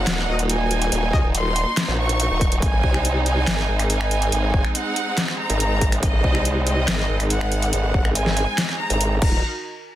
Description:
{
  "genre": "heavy wobble dubstep",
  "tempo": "141 BPM",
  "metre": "4/4",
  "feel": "half-time",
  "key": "unclear",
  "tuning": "A4 = 436 Hz",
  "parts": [
    { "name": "warm studio violin section", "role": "melody", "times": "0.0-9.4 s", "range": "Eb5 to Db6", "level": "-26 LUFS", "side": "equal", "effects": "dub echo" },
    { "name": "warm symphonic string section", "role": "sustained chords", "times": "0.0-9.4 s", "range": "Eb3 to Bb5", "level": "-28 LUFS", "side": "right 3 dB", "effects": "sidechain pumping" },
    { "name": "formant-sweep wobble bass", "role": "bass", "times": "0.0-9.4 s", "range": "Eb1 to Db2", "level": "-22 LUFS", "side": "equal", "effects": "chorus, overdrive" },
    { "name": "dubstep drum kit", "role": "drums", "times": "0.1-9.3 s", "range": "crash cymbal, finger snaps, handclaps, hi-hat, snare drum", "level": "-24 LUFS", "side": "left 1 dB", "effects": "overdrive" },
    { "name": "clear brass ensemble", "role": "stabs", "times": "0.3-1.2 s", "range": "Gb4 to Eb5", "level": "-30 LUFS", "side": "left 2 dB", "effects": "dub echo" },
    { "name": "electronic kick drum", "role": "drums", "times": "1.1-9.3 s", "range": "none", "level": "-20 LUFS", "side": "equal", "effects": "overdrive" }
  ],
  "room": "light reverb, digital ambience",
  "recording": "dense, heavily limited modern master",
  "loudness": "-18 LUFS",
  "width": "side -13 dB against mid",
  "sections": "0.0-9.4 A section",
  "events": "none",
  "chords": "0.0 Ebm; 2.6 Ab; 9.2 Ebm; 9.4 N.C."
}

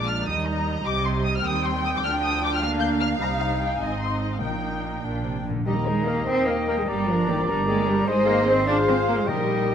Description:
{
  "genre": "quick classical-period movement for symphony orchestra",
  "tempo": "100 BPM (dotted quarters)",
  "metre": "6/8",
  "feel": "rubato",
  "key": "Eb major",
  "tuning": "A4 = 440 Hz",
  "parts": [
    { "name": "muted studio violin section", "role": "melody", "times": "0.0-9.7 s", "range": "Bb4 to G6", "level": "-30 LUFS", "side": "left 3 dB", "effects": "none" },
    { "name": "muted studio violin section", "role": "second line", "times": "0.0-9.7 s", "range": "G4 to G5", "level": "-30 LUFS", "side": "left 3 dB", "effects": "none" },
    { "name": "muted studio viola section", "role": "accompaniment", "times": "0.0-9.7 s", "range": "F3 to Ab4", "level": "-29 LUFS", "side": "right 2 dB", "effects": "none" },
    { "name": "muted studio cello section", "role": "bass", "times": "0.0-9.7 s", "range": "Ab2 to D4", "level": "-27 LUFS", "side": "right 2 dB", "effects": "none" },
    { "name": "muted studio double bass section", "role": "bass", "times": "0.0-9.7 s", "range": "G1 to Eb2", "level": "-30 LUFS", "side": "right 3 dB", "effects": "none" },
    { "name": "timpani", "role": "percussion", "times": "0.0-0.2, 4.4-6.2, 9.3-9.7 s", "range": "Bb2 to Eb3", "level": "-33 LUFS", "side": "left 3 dB", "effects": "none" },
    { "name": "mellow clarinet", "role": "second line", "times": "5.7-9.7 s", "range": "Eb4 to D5", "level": "-30 LUFS", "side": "left 2 dB", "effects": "none" },
    { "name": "silver concert flute", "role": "second line", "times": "5.7-9.7 s", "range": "Eb5 to Bb5", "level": "-30 LUFS", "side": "left 2 dB", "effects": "none" },
    { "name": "warm oboe", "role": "second line", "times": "5.7-9.7 s", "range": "C5 to Eb5", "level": "-30 LUFS", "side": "right 2 dB", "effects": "none" },
    { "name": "mellow French horn section", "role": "sustained chords", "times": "5.7-9.7 s", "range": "D4 to C5", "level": "-28 LUFS", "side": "left 3 dB", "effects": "none" }
  ],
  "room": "moderate concert hall reverb, RT60 1.9 s",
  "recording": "none",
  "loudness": "-21 LUFS",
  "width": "side -8 dB against mid",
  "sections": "0.0-5.7 A section; 5.7-9.7 B section",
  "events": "timpani fill 5.0-5.7",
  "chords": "0.3 Eb; 0.9 Cm; 2.0 Bb/D; 3.2 Cm; 3.8 Ab; 4.4 Eb/Bb; 5.0 Bb; 5.7 Eb; 6.9 Gm; 8.1 Ab; 8.7 Fm/Ab"
}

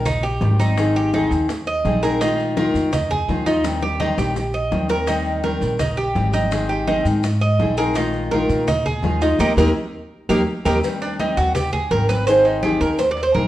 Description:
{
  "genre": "latin, Cuban son and guajira",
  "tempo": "167 BPM",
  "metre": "4/4",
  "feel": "straight",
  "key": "unclear",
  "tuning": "A4 = 443 Hz",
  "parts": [
    { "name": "nylon-string guitar", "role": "accompaniment", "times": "0.0-13.5 s", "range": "Eb3 to Ab4", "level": "-22 LUFS", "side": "left 2 dB", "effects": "none" },
    { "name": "Cuban tres", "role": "arpeggios", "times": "0.0-13.5 s", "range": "D4 to Eb5", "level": "-21 LUFS", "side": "right 2 dB", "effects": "none" },
    { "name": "upright bass", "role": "bass", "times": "0.0-13.5 s", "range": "Ab1 to Bb2", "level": "-23 LUFS", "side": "equal", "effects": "none" },
    { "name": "bongos and cowbell", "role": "percussion", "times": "0.1-13.5 s", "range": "none", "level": "-31 LUFS", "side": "left 4 dB", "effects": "none" },
    { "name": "congas", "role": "percussion", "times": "0.1-13.5 s", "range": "none", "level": "-28 LUFS", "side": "equal", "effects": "none" },
    { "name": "maracas", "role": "percussion", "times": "0.1-13.5 s", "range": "none", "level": "-40 LUFS", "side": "right 3 dB", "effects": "none" }
  ],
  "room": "moderate large studio reverb, RT60 1.2 s",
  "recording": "worn, warbling old tape, cassette tape, warbly pitch drift",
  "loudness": "-17 LUFS",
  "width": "side -14 dB against mid",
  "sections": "0.0-10.8 A section; 10.8-13.5 B section",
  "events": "drum fill 3.6-5.1; band accent 9.4-10.8; Cuban tres solo 10.8-13.5",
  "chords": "0.0 Abmaj7; 2.2 Bb7sus4; 3.6 Abmaj7; 8.0 Bb7sus4; 9.4 Eb6; 12.3 Abmaj7"
}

